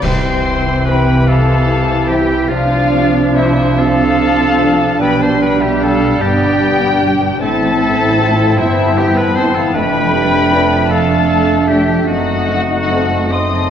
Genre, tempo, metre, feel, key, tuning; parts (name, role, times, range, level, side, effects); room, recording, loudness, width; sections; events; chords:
classical, slow romantic movement for symphony orchestra; 45-52 BPM (dotted quarters); 6/8; rubato; C major; A4 = 435 Hz
muted studio violin section; melody; 0.0-13.7 s; E5 to D#6; -20 LUFS; left 5 dB
bright oboe; second line; 0.0-13.7 s; E4 to D#5; -22 LUFS; right 2 dB
dark clarinet; second line; 0.0-13.7 s; C4 to G4; -20 LUFS; right 3 dB
muted studio violin section; second line; 0.0-13.7 s; E4 to D#5; -22 LUFS; left 2 dB
silver concert flute; second line; 0.0-13.7 s; C5 to C6; -22 LUFS; left 1 dB
muted studio viola section; accompaniment; 0.0-13.7 s; E3 to F4; -20 LUFS; right 2 dB
warm bassoon; accompaniment; 0.0-13.7 s; E3 to C4; -21 LUFS; equal
concert harp; arpeggios; 0.0-13.7 s; F2 to D6; -22 LUFS; left 6 dB
muted studio cello section; bass; 0.0-13.7 s; F2 to C3; -19 LUFS; right 2 dB
muted studio double bass section; bass; 0.0-13.7 s; F1 to C2; -22 LUFS; right 3 dB
clash cymbals and concert bass drum; percussion; 0.0-1.6 s; -25 LUFS; equal
timpani; percussion; 0.0-1.2 s; C3; -25 LUFS; right 1 dB
mellow French horn section; sustained chords; 0.9-13.1 s; E3 to E4; -24 LUFS; left 2 dB
wet concert hall reverb, RT60 1.8 s; worn, warbling old tape, cassette tape, warbly pitch drift, faint mains hum; -11 LUFS; side -8 dB against mid
0.0-13.7 A section
band accent 0.0-0.9
0.0 C; 2.5 Dm7/C; 5.0 G/B; 7.4 Am; 9.7 Dm/F; 12.1 F#dim7